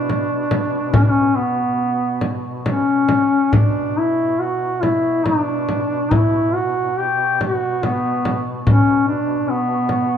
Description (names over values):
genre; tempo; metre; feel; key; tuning
caucasian folk, Caucasian lament; 70 BPM; 3/4; uneven beats, rubato; B minor; A4 = 440 Hz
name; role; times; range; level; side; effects
mellow duduk; melody; 0.0-10.2 s; B3 to G4; -18 LUFS; left 1 dB; none
warm duduk; drone; 0.0-10.2 s; B2; -27 LUFS; left 1 dB; none
frame drum; percussion; 0.1-10.1 s; none; -19 LUFS; left 1 dB; none
room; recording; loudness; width
moderate scoring stage reverb, RT60 2.0 s; none; -16 LUFS; side -8 dB against mid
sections
0.0-10.2 A section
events
none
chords
none